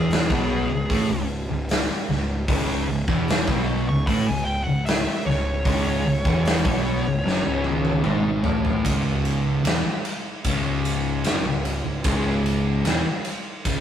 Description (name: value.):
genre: stoner and doom metal.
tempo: 75 BPM.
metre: 4/4.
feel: straight.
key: C# minor.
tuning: A4 = 440 Hz.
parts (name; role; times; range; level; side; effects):
fuzz lead guitar; melody; 0.0-7.6 s; G#4 to C#6; -29 LUFS; equal; distortion.
fuzz guitar; riff; 0.0-13.8 s; C#2 to B3; -23 LUFS; left 1 dB; distortion.
fuzz picked electric bass; bass; 0.0-13.8 s; C#1 to B1; -28 LUFS; equal; overdrive.
big rock drum kit; drums; 0.1-13.8 s; hi-hat, kick drum, ride cymbal, snare drum, toms; -25 LUFS; equal; none.
room: light reverb.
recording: rough rehearsal-room recording, tube saturation.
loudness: -20 LUFS.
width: side -9 dB against mid.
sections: 0.0-8.9 A section; 8.9-13.8 B section.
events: lead electric guitar solo 0.0-8.9; drum fill 7.3-8.9.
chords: 0.0 C#m.